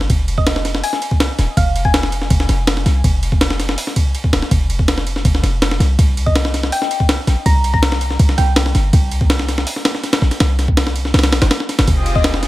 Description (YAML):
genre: drum and bass, jungle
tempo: 163 BPM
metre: 4/4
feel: straight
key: unclear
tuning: A4 = 439 Hz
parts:
  - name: warm 808-style bass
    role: bass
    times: 0.0-12.5 s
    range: Eb1 to C2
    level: -17 LUFS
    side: equal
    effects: none
  - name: breakbeat sampler-style drum kit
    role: drums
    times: 0.0-12.5 s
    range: hi-hat, kick drum, ride cymbal, snare drum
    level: -16 LUFS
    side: equal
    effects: none
  - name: thumb-piano-like synth pluck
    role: melody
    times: 0.4-2.4, 6.3-8.9, 12.2-12.4 s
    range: Eb5 to Bb5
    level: -24 LUFS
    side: left 1 dB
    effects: chorus, dub echo
  - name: lush unison pad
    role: sustained chords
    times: 11.9-12.5 s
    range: C4 to Eb5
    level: -23 LUFS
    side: equal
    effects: chorus
room: digital ambience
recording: none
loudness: -13 LUFS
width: side -17 dB against mid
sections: 0.0-11.9 A section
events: drop 0.0-11.9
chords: 0.1 N.C.; 6.0 C5; 11.9 Fm9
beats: | 0.10 0.47 0.83 1.20 | 1.57 1.94 2.31 2.67 | 3.04 3.41 3.78 4.15 | 4.51 4.88 5.25 5.62 | 5.99 6.36 6.72 7.09 | 7.46 7.83 8.20 8.56 | 8.93 9.30 9.67 10.04 | 10.40 10.77 11.14 11.51 | 11.88 12.24